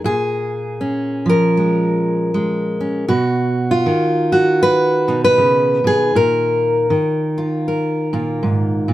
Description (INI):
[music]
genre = folk, solo fingerstyle acoustic guitar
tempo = 79 BPM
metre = 4/4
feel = swing 61% on 8ths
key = unclear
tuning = A4 = 440 Hz
[part]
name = fingerpicked steel-string acoustic guitar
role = solo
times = 0.0-8.9 s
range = Ab2 to B4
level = -14 LUFS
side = equal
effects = none
[sound]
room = moderate studio ambience, RT60 0.5 s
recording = none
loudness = -14 LUFS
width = side -14 dB against mid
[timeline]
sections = 0.0-3.1 A section; 3.1-8.9 B section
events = none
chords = 0.0 Bbm7; 3.1 B; 6.1 Ebsus2/Bb